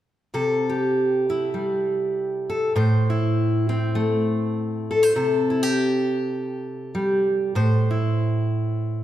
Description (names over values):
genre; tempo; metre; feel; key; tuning
folk; 100 BPM; 4/4; swing 57% on 8ths; C major; A4 = 440 Hz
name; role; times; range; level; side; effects
fingerpicked steel-string acoustic guitar; solo; 0.3-9.0 s; A2 to C5; -20 LUFS; equal; none
room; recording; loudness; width
moderate scoring stage reverb, RT60 1.8 s; recorded in a church or concert hall; -20 LUFS; side -12 dB against mid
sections
0.3-5.2 A section; 5.2-9.0 B section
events
none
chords
0.3 C6; 2.7 Am; 5.2 C6; 7.6 Am